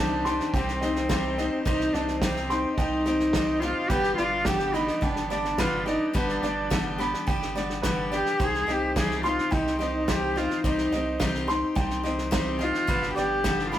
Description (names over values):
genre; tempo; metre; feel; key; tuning
indie folk with a building arrangement; 107 BPM; 4/4; straight; C harmonic minor; A4 = 441 Hz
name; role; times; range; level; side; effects
warm cello; melody; 0.0-13.8 s; C4 to Ab4; -27 LUFS; equal; none
picked steel-string acoustic guitar; accompaniment; 0.0-13.8 s; G2 to G4; -30 LUFS; left 3 dB; none
clear upright piano; arpeggios; 0.0-13.8 s; B4 to C6; -32 LUFS; right 2 dB; none
saturated sub bass; bass; 0.0-13.8 s; G1 to C2; -36 LUFS; equal; none
natural country drum kit; drums; 0.3-13.8 s; kick drum, snare drum; -29 LUFS; equal; none
room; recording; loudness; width
moderate studio reverb, RT60 0.5 s; rough rehearsal-room recording, warm saturation; -23 LUFS; side -12 dB against mid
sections
0.0-13.8 A section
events
none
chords
0.0 Cm; 3.9 G; 8.4 Cm; 12.9 G